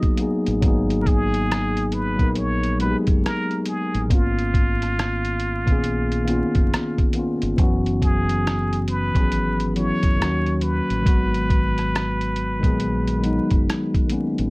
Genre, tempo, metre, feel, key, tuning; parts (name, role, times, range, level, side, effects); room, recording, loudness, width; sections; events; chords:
lo-fi hip hop; 69 BPM; 4/4; swing 62% on 16ths; G# minor; A4 = 440 Hz
trumpet with plunger mute; melody; 0.0-13.7 s; E#4 to D#5; -28 LUFS; right 1 dB; low-pass filter
mellow tine electric piano; accompaniment; 0.0-14.5 s; D#3 to A#4; -22 LUFS; left 1 dB; cassette tape, low-pass filter
lo-fi sampler-style drum kit; drums; 0.0-14.5 s; hi-hat, kick drum, rim click; -21 LUFS; equal
deep dub fingered electric bass; bass; 0.5-14.5 s; F#1 to D#2; -26 LUFS; equal
light reverb; vinyl crackle; -18 LUFS; side -24 dB against mid
0.6-14.5 A section
0.0 G#m9; 4.1 C#13/G#; 7.6 F#7sus4; 10.2 D#m7; 11.1 G#m9